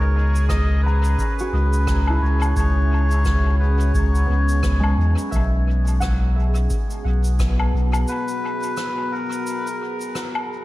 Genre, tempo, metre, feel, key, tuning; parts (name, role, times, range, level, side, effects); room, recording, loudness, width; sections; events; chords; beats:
ambient dub; 87 BPM; 4/4; swing 58% on 16ths; C# dorian; A4 = 441 Hz
melodica; melody; 0.0-9.8 s; A#4 to D#5; -28 LUFS; left 1 dB; dub echo
deep dark ambient pad; sustained chords; 0.0-10.6 s; B3 to A#5; -30 LUFS; equal; chorus, built-in reverb
warm sub bass; bass; 0.0-8.0 s; B1 to E2; -18 LUFS; equal
bubbling stepped-filter texture; texture; 0.0-10.6 s; G#4; -35 LUFS; right 4 dB; chorus, built-in reverb
cabasa, rim click and woodblock; drums; 0.4-10.5 s; -32 LUFS; left 2 dB; studio reverb, dub echo
concert harp; arpeggios; 0.5-8.0 s; G#3 to D#6; -32 LUFS; equal; dub echo
electronic kick drum; drums; 0.5-7.6 s; -26 LUFS; equal; overdrive, studio reverb
small room ambience; echo-heavy mix, vinyl crackle; -18 LUFS; side -17 dB against mid
0.0-10.6 A section
break 8.1-10.6
0.0 C#m11; 5.3 Bmaj7
0.50 1.19 1.88 | 2.57 3.25 3.94 4.63 | 5.32 6.01 6.70 7.39 | 8.08 8.77 9.46 10.15